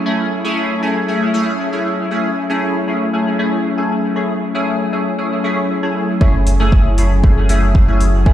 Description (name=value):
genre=dub techno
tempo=117 BPM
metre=4/4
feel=straight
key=F# minor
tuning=A4 = 445 Hz
part: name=warbly tape-like pad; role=sustained chords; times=0.0-8.3 s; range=F#3 to E4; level=-22 LUFS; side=left 2 dB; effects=chorus, built-in reverb, sidechain pumping
part: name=wind-like tuned noise texture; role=texture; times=0.0-8.3 s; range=E4 to F#4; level=-30 LUFS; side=left 1 dB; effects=built-in reverb, sidechain pumping
part: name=resonant sweep polysynth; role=stabs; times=0.1-8.3 s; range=A3 to G#4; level=-18 LUFS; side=equal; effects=chorus, phaser, sidechain pumping, dub echo
part: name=filtered dub chord stab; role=riff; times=6.2-8.3 s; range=A4 to G#5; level=-28 LUFS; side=right 3 dB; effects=chorus, sidechain pumping, dub echo
part: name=pure sine sub bass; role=bass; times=6.2-8.3 s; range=F#1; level=-15 LUFS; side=equal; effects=tube saturation, sidechain pumping
part: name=electronic kick drum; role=drums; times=6.2-8.3 s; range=none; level=-12 LUFS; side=equal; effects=overdrive
part: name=electronic hi-hat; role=drums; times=6.5-8.1 s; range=none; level=-30 LUFS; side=equal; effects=overdrive, low-pass filter on hats, low-pass filter on room
room=light reverb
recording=played on a big sound system in a bare room, stone room reverb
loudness=-14 LUFS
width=side -12 dB against mid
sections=0.0-6.2 A section; 6.2-8.3 B section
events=none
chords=0.0 F#m7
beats=| 0.06 0.57 1.08 1.60 | 2.11 2.62 3.13 3.65 | 4.16 4.67 5.18 5.70 | 6.21 6.72 7.24 7.75 | 8.26